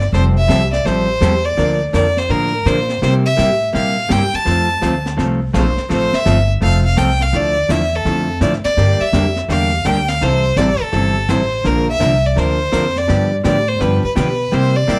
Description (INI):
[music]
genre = country, western swing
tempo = 167 BPM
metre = 4/4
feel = swing 65% on 8ths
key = F major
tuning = A4 = 439 Hz
[part]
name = clear fiddle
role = melody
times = 0.0-15.0 s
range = A4 to A5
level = -20 LUFS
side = equal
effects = plate reverb
[part]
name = upright bass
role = bass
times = 0.0-15.0 s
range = F1 to C3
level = -20 LUFS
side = equal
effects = none
[part]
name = jazz brush drum kit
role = drums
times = 0.0-15.0 s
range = brushed snare drum, hi-hat, snare drum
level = -28 LUFS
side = equal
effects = none
[part]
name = vintage hollow-body jazz guitar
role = accompaniment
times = 0.1-15.0 s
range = C3 to Bb4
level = -22 LUFS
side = equal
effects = none
[sound]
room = moderate studio reverb, RT60 0.8 s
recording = none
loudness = -16 LUFS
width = mono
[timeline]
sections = 0.0-15.0 A section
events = none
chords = 0.1 Fadd9; 1.6 Bb; 3.0 C7; 4.5 F; 7.3 Dmadd9; 8.8 Gm; 10.2 C6; 11.6 Bb; 13.1 G7